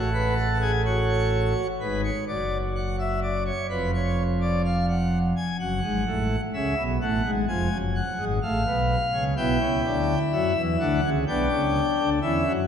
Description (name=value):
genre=classical, baroque-style 3-part fugue for pipe organ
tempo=63 BPM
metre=4/4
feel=straight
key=unclear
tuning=A4 = 440 Hz
part: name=pipe organ, plenum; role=solo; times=0.0-12.7 s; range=E#1 to G#5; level=-22 LUFS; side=equal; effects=none
room=wet church reverb, RT60 2.6 s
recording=dark, warm production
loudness=-22 LUFS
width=side -8 dB against mid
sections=0.0-1.8 A section; 1.8-12.7 B section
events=none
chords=0.0 F#m/A; 1.8 E; 3.7 C#7/E#; 5.6 F#m; 7.5 C#/E#; 9.4 G/B